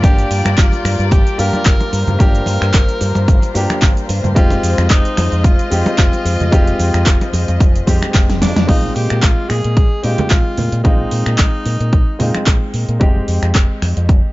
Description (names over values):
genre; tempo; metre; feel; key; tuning
nu-disco, nu disco; 111 BPM; 4/4; swing 55% on 16ths; unclear; A4 = 438 Hz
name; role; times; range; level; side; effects
clear tenor saxophone; melody; 0.0-12.7 s; D4 to Bb4; -23 LUFS; left 1 dB; analog delay
clear grand piano; accompaniment; 0.0-14.3 s; Ab3 to G4; -22 LUFS; equal; sidechain pumping, low-pass filter, slapback echo
warm chamber string section; sustained chords; 0.0-8.6 s; G3 to Eb5; -25 LUFS; left 3 dB; sidechain pumping
fingered electric bass with an envelope filter; bass; 0.0-14.2 s; F1 to Bb2; -17 LUFS; equal; sidechain pumping
electronic kick drum; drums; 0.0-14.2 s; none; -12 LUFS; equal; overdrive
pop drum kit; drums; 0.0-14.2 s; cabasa, crash cymbal, finger snaps, handclaps, hi-hat, snare drum; -21 LUFS; equal; overdrive
congas; percussion; 0.0-13.9 s; none; -24 LUFS; right 1 dB; none
room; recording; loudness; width
studio reverb; nothing above 7.6 kHz; -12 LUFS; side -19 dB against mid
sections
0.0-8.7 A section; 8.7-14.3 B section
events
drop 0.0-8.7; drum fill 8.3-8.7; band accent 8.5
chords
0.0 Gm7; 4.4 Fm7; 8.7 Bb7sus4; 13.0 Fm7